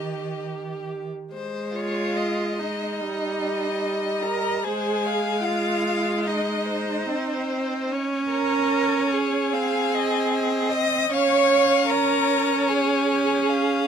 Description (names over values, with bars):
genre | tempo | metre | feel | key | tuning
classical, slow romantic movement for string quartet | 74 BPM | 4/4 | rubato | Ab major | A4 = 441 Hz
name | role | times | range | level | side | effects
rich violin | melody | 0.0-13.9 s | Eb5 to Eb6 | -29 LUFS | left 9 dB | none
rich violin | second line | 0.0-13.9 s | G4 to F5 | -29 LUFS | left 4 dB | none
clear viola | accompaniment | 0.0-13.9 s | G3 to G4 | -25 LUFS | right 2 dB | none
rich cello | bass | 0.0-13.9 s | Eb3 to Eb5 | -26 LUFS | right 4 dB | none
room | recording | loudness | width
light reverb | close, detailed microphones | -21 LUFS | side -8 dB against mid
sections
0.0-1.3 A section; 1.3-13.9 B section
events
none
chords
0.0 Eb; 1.3 Ab; 3.0 Eb/G; 4.7 Ab; 7.9 Db5; 9.5 Ab/C; 11.1 Db